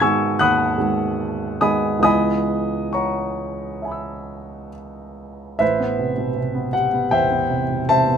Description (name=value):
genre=classical, impressionist solo piano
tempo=64-82 BPM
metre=4/4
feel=rubato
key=C# dorian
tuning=A4 = 440 Hz
part: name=warm grand piano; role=solo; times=0.0-8.2 s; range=A1 to G#6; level=-18 LUFS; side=equal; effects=none
room=moderate stone room reverb, RT60 1.3 s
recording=minimal, uncompressed stereo recording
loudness=-18 LUFS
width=side -7 dB against mid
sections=0.0-5.6 A section; 5.6-8.2 B section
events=none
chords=0.0 G#m7; 2.0 C#m7; 5.6 Am9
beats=0.40 1.20 | 2.05 2.94 3.84 4.73 | 5.61 6.38 7.14 7.89